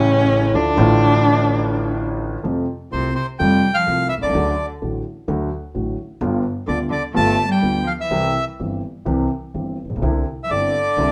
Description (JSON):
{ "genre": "tango", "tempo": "126 BPM", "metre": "4/4", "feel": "rubato", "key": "F major", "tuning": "A4 = 439 Hz", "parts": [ { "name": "warm cello", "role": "second line", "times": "0.0-11.1 s", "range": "C3 to D4", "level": "-23 LUFS", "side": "equal", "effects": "none" }, { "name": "warm concert grand piano", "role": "accompaniment", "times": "0.0-11.1 s", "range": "G1 to G4", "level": "-24 LUFS", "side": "equal", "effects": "none" }, { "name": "upright bass", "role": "bass", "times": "0.0-11.1 s", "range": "G1 to F2", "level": "-27 LUFS", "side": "equal", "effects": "none" }, { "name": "bandoneon", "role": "melody", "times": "2.9-11.1 s", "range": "C5 to A5", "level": "-22 LUFS", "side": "equal", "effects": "none" } ], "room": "moderate studio reverb, RT60 0.8 s", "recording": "band playing live in one room", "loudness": "-20 LUFS", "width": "mono", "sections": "0.0-2.4 A section; 2.4-11.1 B section", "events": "cello solo 0.0-2.4", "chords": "0.0 A7; 0.5 Dm; 2.4 Fadd9; 4.3 D; 6.2 G7; 8.1 C; 10.0 Cadd9" }